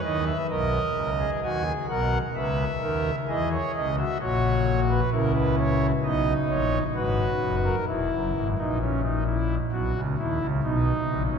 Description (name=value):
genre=classical, baroque-style 3-part fugue for pipe organ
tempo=65 BPM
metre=4/4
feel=straight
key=C# minor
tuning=A4 = 438 Hz
part: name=pipe organ, foundations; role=solo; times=0.0-11.4 s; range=E1 to G#5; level=-23 LUFS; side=equal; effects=none
room=wet cathedral reverb, RT60 5.1 s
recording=minimal, uncompressed stereo recording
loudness=-23 LUFS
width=side -6 dB against mid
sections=0.5-11.4 A section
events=none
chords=0.0 G#m (rootless); 0.5 G#m/B; 2.4 C#m7; 4.2 F#/A#; 6.1 Bmaj7; 7.9 C#m/E; 9.7 B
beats=| 0.50 1.43 2.36 3.29 | 4.21 5.14 6.06 6.97 | 7.89 8.81 9.73 10.64